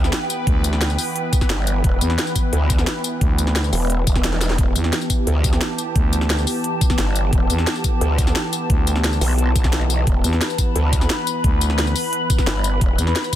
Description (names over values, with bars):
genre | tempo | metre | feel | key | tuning
dark technical drum and bass | 175 BPM | 4/4 | straight | E minor | A4 = 440 Hz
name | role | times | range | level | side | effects
sweeping resonant pad | sustained chords | 0.0-13.4 s | E3 to B4 | -26 LUFS | equal | chorus, sidechain pumping
growl bass | bass | 0.0-13.0 s | E1 to D2 | -20 LUFS | equal | chorus, tube saturation, sidechain pumping
drum and bass drum kit | drums | 0.0-13.4 s | hi-hat, snare drum, tambourine | -24 LUFS | left 1 dB | none
granular cloud pad | texture | 0.0-13.4 s | G5 to B5 | -29 LUFS | left 1 dB | built-in reverb, sidechain pumping
growling FM bass | bass | 0.5-13.1 s | D2 to E2 | -20 LUFS | equal | none
electronic kick drum | drums | 0.5-13.4 s | none | -19 LUFS | equal | overdrive
room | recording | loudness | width
digital ambience | dense, heavily limited modern master | -17 LUFS | side -12 dB against mid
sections
0.0-13.4 A section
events
drum fill 4.3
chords
0.0 Em